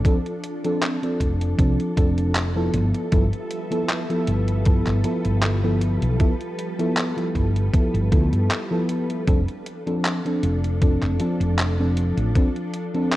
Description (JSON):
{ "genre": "vaporwave", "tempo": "78 BPM", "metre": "4/4", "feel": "swing 54% on 16ths", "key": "F lydian", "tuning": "A4 = 439 Hz", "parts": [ { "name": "mellow FM electric piano", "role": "accompaniment", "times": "0.0-13.2 s", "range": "F3 to A4", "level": "-24 LUFS", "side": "equal", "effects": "analog chorus, tape echo" }, { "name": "soft string machine", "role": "sustained chords", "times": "0.0-13.2 s", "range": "F3 to E5", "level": "-31 LUFS", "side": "equal", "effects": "ensemble chorus" }, { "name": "detuned 8-bit digital drum machine", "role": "drums", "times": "0.1-13.2 s", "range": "handclaps, hi-hat", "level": "-28 LUFS", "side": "equal", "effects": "overdrive, studio reverb" }, { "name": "electronic kick drum", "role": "drums", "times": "0.1-12.5 s", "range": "none", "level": "-19 LUFS", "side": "equal", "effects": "overdrive, studio reverb" }, { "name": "woody fretless electric bass", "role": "bass", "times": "1.2-12.3 s", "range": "F1 to G2", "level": "-22 LUFS", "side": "equal", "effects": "none" } ], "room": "light reverb", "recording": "cassette tape", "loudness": "-19 LUFS", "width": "side -16 dB against mid", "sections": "0.0-13.2 A section", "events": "none", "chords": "0.0 F6; 2.7 G13; 9.3 F6" }